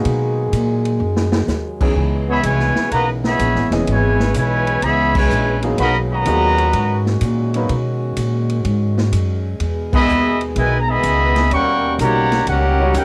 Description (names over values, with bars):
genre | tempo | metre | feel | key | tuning
jazz, big band swing | 126 BPM | 4/4 | swing 68% on 8ths | G# minor | A4 = 439 Hz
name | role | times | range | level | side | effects
warm baby grand piano | accompaniment | 0.0-7.7, 12.0-12.9 s | E3 to D#5 | -25 LUFS | equal | cassette tape
mellow trombone section | sustained chords | 0.0-13.0 s | B2 to G#4 | -29 LUFS | equal | cassette tape
upright bass | bass | 0.0-13.0 s | E1 to B2 | -22 LUFS | equal | none
swinging big-band drum kit | drums | 0.0-13.0 s | crash cymbal, hi-hat, kick drum, ride cymbal, snare drum | -26 LUFS | equal | cassette tape
clear trumpet section | melody | 2.3-7.0, 9.9-13.0 s | C#4 to C#6 | -20 LUFS | equal | cassette tape
clear trombone section | second line | 2.3-7.0, 9.9-13.0 s | A#2 to G4 | -24 LUFS | equal | cassette tape
room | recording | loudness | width
moderate small room reverb, RT60 0.5 s | home recording on cassette | -17 LUFS | mono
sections
0.0-13.0 A section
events
drum fill 1.0-1.5; band accent 5.1, 9.8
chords
0.0 G#m9; 2.0 C#m7; 5.8 G#m9; 9.6 Emaj7; 11.5 D#7#9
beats
| 0.06 0.53 1.01 1.49 | 1.97 2.44 2.92 3.40 | 3.88 4.35 4.83 5.31 | 5.79 6.27 6.74 7.22 | 7.70 8.18 8.65 9.13 | 9.61 10.09 10.56 11.04 | 11.52 11.99 12.47 12.94